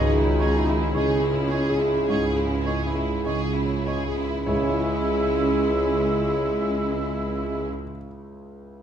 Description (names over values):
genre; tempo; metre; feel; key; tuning
classical, romantic movement for piano and orchestra; 47-57 BPM; 4/4; rubato; C# minor; A4 = 439 Hz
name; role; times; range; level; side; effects
clear chamber violin section; melody; 0.0-7.7 s; E4 to G#4; -34 LUFS; equal; none
clear concert grand piano; melody; 0.0-8.8 s; C#2 to E5; -28 LUFS; left 1 dB; none
mellow baroque flute; second line; 0.0-7.7 s; E4 to G#4; -29 LUFS; equal; none
rich chamber violin section; second line; 0.0-7.7 s; G#3 to E4; -35 LUFS; right 1 dB; none
warm clarinet; second line; 0.0-7.7 s; C#4 to E4; -34 LUFS; left 2 dB; none
warm oboe; second line; 0.0-7.7 s; C#5 to E5; -35 LUFS; right 2 dB; none
rich chamber viola section; accompaniment; 0.0-7.7 s; G#3 to G#4; -32 LUFS; equal; none
warm bassoon; accompaniment; 0.0-7.7 s; G#3; -35 LUFS; right 2 dB; none
dark French horn section; sustained chords; 0.0-7.7 s; C#3 to C#4; -32 LUFS; left 1 dB; none
clear studio double bass section; bass; 0.0-7.7 s; C#2; -30 LUFS; right 1 dB; none
warm chamber cello section; bass; 0.0-7.7 s; C#3; -33 LUFS; right 2 dB; none
warm tuba; bass; 0.0-7.7 s; C#2; -31 LUFS; right 3 dB; none
timpani; percussion; 4.5-7.7 s; none; barely audible; none; none
room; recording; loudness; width
wet stone room reverb, RT60 1.4 s; dark, warm production; -21 LUFS; side -9 dB against mid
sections
0.0-4.5 A section; 4.5-8.8 B section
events
slowing down 0.0-4.5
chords
0.0 C#m